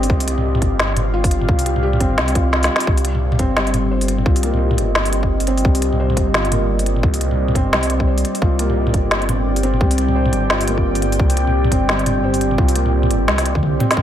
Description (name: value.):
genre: half-time drum and bass.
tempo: 173 BPM.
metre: 4/4.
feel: swing 59% on 16ths, half-time.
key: C minor.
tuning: A4 = 440 Hz.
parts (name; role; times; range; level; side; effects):
deep dark ambient pad; sustained chords; 0.0-14.0 s; C4 to G5; -23 LUFS; equal; chorus, built-in reverb, sidechain pumping.
felt-muted upright piano; arpeggios; 0.0-14.0 s; G3 to C5; -23 LUFS; equal; digital delay.
phased detuned saw bass; bass; 0.0-14.0 s; G1 to C2; -20 LUFS; equal; phaser, tube saturation.
organic electronic drum kit; drums; 0.0-14.0 s; hi-hat, snare drum, toms; -21 LUFS; equal; overdrive.
electronic kick drum; drums; 0.1-14.0 s; none; -18 LUFS; equal; none.
room: light reverb.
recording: none.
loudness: -15 LUFS.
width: side -10 dB against mid.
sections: 0.0-2.9 A section; 2.9-14.0 A section.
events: drop 0.0-2.9, 2.9-14.0; kick drops out 2.5-2.9; drum fill 2.5-2.9, 13.3-14.0.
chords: 0.0 Csus2; 2.9 Cmadd9.